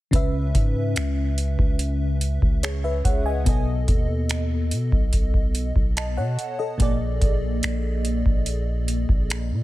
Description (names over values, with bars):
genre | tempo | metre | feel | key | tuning
contemporary R&B | 72 BPM | 4/4 | straight | C# minor | A4 = 440 Hz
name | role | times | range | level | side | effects
FM electric piano with soft pad layer | accompaniment | 0.1-9.6 s | A#2 to A5 | -27 LUFS | left 1 dB | chorus, tremolo
long sustained 808-style bass | bass | 0.1-9.6 s | A#1 to B2 | -25 LUFS | equal | none
booming analog drum machine | drums | 0.1-9.5 s | finger snaps, hi-hat, kick drum | -21 LUFS | equal | soft clipping on snare
room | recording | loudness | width
little or no reverb | dense, heavily limited modern master | -20 LUFS | side -17 dB against mid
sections
0.1-9.6 A section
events
none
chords
0.1 C#m7; 3.5 B7; 6.8 A#7